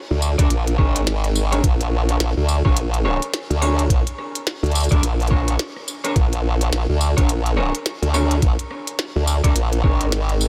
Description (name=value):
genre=glitch hop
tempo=106 BPM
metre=4/4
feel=swing 60% on 16ths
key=unclear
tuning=A4 = 438 Hz
part: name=formant-sweep wobble bass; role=bass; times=0.1-10.5 s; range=Ab1 to D2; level=-21 LUFS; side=equal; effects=chorus
part: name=glitchy drum kit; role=drums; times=0.2-10.5 s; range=hi-hat, rim click, snare drum, tambourine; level=-29 LUFS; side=equal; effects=overdrive
part: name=electric guitar at the edge of break-up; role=stabs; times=0.4-10.1 s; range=D4 to D5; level=-29 LUFS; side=equal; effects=analog chorus, sidechain pumping, tape echo
part: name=electronic kick drum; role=drums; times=0.4-10.0 s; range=none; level=-21 LUFS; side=equal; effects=none
room=light reverb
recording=none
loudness=-20 LUFS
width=mono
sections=0.0-10.5 A section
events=none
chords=0.0 Bb7#9